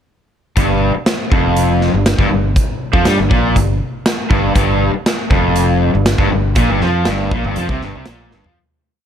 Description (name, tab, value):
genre	classic rock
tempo	120 BPM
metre	4/4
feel	straight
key	G minor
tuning	A4 = 441 Hz
part	cranked stack guitar	riff	0.6-8.6 s	F2 to G3	-19 LUFS	left 11 dB	overdrive
part	raw garage guitar	riff	0.6-8.6 s	F2 to G3	-19 LUFS	right 12 dB	overdrive
part	modern bright fingered electric bass	bass	0.6-8.6 s	F1 to G2	-18 LUFS	equal	none
part	big rock drum kit	drums	0.6-8.6 s	hi-hat, kick drum, snare drum, toms	-17 LUFS	equal	none
room	studio ambience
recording	none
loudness	-12 LUFS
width	side -9 dB against mid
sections	0.6-8.6 riff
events	fade-out 6.6-8.6; drum fill 8.3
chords	0.6 Gm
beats	| 0.58 1.07 1.57 2.07 | 2.56 3.06 3.56 4.06 | 4.56 5.06 5.56 6.07 | 6.57 7.07 7.57 8.07